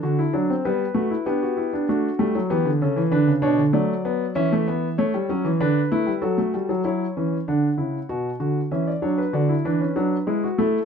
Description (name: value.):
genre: classical, baroque-style 3-part fugue for grand piano.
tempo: 97 BPM.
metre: 4/4.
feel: straight.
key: unclear.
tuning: A4 = 440 Hz.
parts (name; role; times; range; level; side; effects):
warm concert grand piano; solo; 0.0-10.8 s; B2 to F#5; -20 LUFS; equal; none.
room: light reverb.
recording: minimal, uncompressed stereo recording.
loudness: -20 LUFS.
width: side -6 dB against mid.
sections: 0.0-6.9 A section; 6.9-10.8 B section.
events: none.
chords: 0.0 D7; 0.6 G; 1.9 D; 3.1 Bm9; 4.4 A/E; 5.6 D; 6.9 F#5; 8.1 Bm; 9.3 E7/D.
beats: 0.02 0.64 1.26 | 1.88 2.50 3.12 3.73 | 4.36 4.98 5.60 6.23 | 6.85 7.48 8.10 8.72 | 9.35 9.97 10.58.